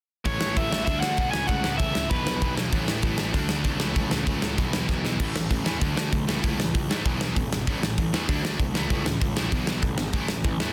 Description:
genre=punk rock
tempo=194 BPM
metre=4/4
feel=straight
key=A major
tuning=A4 = 440 Hz
part: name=sludgy distorted guitar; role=riff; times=0.2-10.7 s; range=E2 to D4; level=-31 LUFS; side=equal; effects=overdrive
part: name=overdriven semi-hollow guitar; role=melody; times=0.3-2.5 s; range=B4 to G#5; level=-30 LUFS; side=equal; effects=none
part: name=fuzz picked electric bass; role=bass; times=0.3-10.7 s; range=G#1 to G#2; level=-33 LUFS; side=equal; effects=overdrive
part: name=big rock drum kit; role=drums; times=0.3-10.7 s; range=crash cymbal, hi-hat, kick drum, snare drum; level=-29 LUFS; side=equal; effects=none
room=light reverb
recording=dense, heavily limited modern master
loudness=-25 LUFS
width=mono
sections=0.3-5.2 A section; 5.2-10.7 B section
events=drum fill 4.9-5.2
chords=0.3 A; 0.9 D; 1.3 A/C#; 2.1 E5/B; 2.7 A5; 3.3 D5; 3.8 A/C#; 4.6 E5/B; 5.2 A5; 5.8 D5; 6.3 A/C#; 7.1 E/B; 7.7 A5; 8.3 D5; 8.8 A/C#; 9.5 E/B; 10.1 A5

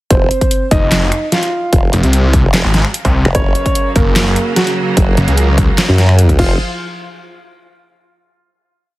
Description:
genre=heavy wobble dubstep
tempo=148 BPM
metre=4/4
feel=half-time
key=unclear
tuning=A4 = 440 Hz
part: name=dark grand piano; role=melody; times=0.1-6.5 s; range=Gb3 to F5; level=-19 LUFS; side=right 1 dB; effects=dub echo
part: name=formant-sweep wobble bass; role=bass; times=0.1-6.6 s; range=F1 to Gb2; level=-12 LUFS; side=equal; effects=chorus, overdrive
part: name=dubstep drum kit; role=drums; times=0.1-6.5 s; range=crash cymbal, finger snaps, handclaps, hi-hat, snare drum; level=-18 LUFS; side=equal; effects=overdrive
part: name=electronic kick drum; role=drums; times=0.1-6.5 s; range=none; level=-14 LUFS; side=equal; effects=overdrive
part: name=snarling distorted saw bass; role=bass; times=0.7-5.7 s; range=F1 to Db2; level=-12 LUFS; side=equal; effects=distortion, overdrive
part: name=clear symphonic string section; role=sustained chords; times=3.3-6.6 s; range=Db3 to C5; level=-22 LUFS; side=right 2 dB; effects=sidechain pumping
room=digital ambience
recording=heavily compressed radio sound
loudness=-10 LUFS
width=side -18 dB against mid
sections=0.1-6.6 drop; 6.6-8.2 final hit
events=drop 0.1-6.6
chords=0.1 F5; 3.3 Gb; 6.4 Fm; 6.6 N.C.

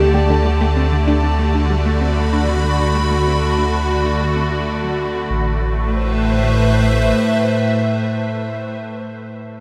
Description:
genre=ambient, sequencer-driven space music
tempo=96 BPM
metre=4/4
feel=straight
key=A dorian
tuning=A4 = 442 Hz
part: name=evolving wavetable pad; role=sustained chords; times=0.0-8.6 s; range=A2 to B5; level=-20 LUFS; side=equal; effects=ensemble chorus, built-in reverb
part: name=tight sequenced synth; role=riff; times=0.0-5.6 s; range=A2 to F#4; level=-27 LUFS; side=equal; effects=chorus, delay
part: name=warm sub bass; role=bass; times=0.0-7.1 s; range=A1 to D2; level=-21 LUFS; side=equal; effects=none
room=wet echo chamber reverb, RT60 2.1 s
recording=echo-heavy mix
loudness=-17 LUFS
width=mono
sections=0.0-5.3 A section; 5.3-7.8 B section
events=fade-out on synth arpeggio sound 0.0-5.3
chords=0.0 Dsus4; 5.3 Amadd9

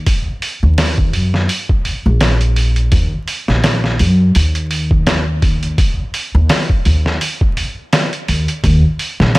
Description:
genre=trip hop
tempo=84 BPM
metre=4/4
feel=swing 56% on 16ths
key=Eb minor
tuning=A4 = 438 Hz
part: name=upright bass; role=bass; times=0.0-9.4 s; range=Bb1 to Gb2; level=-13 LUFS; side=equal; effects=none
part: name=trip hop sampler-style drum kit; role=drums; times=0.1-9.4 s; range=hi-hat, kick drum, snare drum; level=-15 LUFS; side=equal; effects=small room ambience
room=digital ambience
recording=vinyl crackle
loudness=-12 LUFS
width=side -21 dB against mid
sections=0.0-9.4 A section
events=none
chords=none

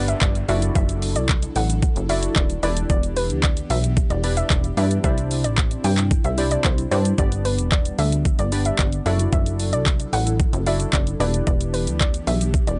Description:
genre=dance-pop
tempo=112 BPM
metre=4/4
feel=straight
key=unclear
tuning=A4 = 441 Hz
part: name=glassy digital keys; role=accompaniment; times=0.0-12.1 s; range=B3 to D5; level=-31 LUFS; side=equal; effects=chorus, sidechain pumping
part: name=airy breathy pad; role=sustained chords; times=0.0-12.8 s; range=C3 to A4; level=-34 LUFS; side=equal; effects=chorus, sidechain pumping
part: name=plucky analog bass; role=bass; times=0.0-12.8 s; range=Eb1 to G2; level=-25 LUFS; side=equal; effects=sidechain pumping
part: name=downlifter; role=sound effects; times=0.0-2.9 s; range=none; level=-46 LUFS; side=equal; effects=none
part: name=hollow square pluck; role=melody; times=0.1-12.8 s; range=B4 to G5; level=-30 LUFS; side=equal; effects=chorus, sidechain pumping, analog delay
part: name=pop drum kit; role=drums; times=0.1-12.8 s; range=handclaps, hi-hat, kick drum, shaker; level=-24 LUFS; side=equal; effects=overdrive
room=little or no reverb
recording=dry, gritty hardware recording, transformer saturation, nothing above 10.4 kHz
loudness=-21 LUFS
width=mono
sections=0.0-12.8 A section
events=none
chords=0.5 Dadd9/F#; 2.6 Em7; 5.0 Cadd9; 7.2 G; 9.1 Dadd9/F#; 11.2 Em7

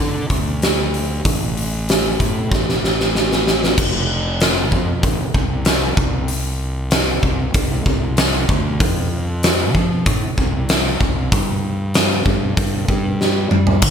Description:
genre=classic rock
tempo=96 BPM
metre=4/4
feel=straight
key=unclear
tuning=A4 = 439 Hz
part: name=fuzz fingered electric bass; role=bass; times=0.0-13.9 s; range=F1 to G3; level=-21 LUFS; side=equal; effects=overdrive
part: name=big rock drum kit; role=drums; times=0.3-13.9 s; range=crash cymbal, hi-hat, kick drum, snare drum, toms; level=-17 LUFS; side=equal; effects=none
room=light reverb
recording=none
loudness=-15 LUFS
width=side -8 dB against mid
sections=0.0-3.8 A section; 3.8-13.8 B section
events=drum fill 2.5-3.8, 13.2-13.8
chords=none

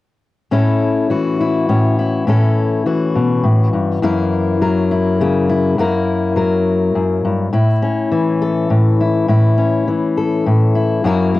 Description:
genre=folk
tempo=68 BPM (dotted quarters)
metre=6/8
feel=straight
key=unclear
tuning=A4 = 439 Hz
part: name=fingerpicked steel-string acoustic guitar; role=solo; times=0.5-11.4 s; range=F#2 to A#4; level=-13 LUFS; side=left 2 dB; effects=cassette tape
room=light reverb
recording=home recording on cassette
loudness=-13 LUFS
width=side -16 dB against mid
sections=0.5-7.5 A section; 7.5-11.4 B section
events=none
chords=0.5 A; 4.0 F#7; 7.5 A

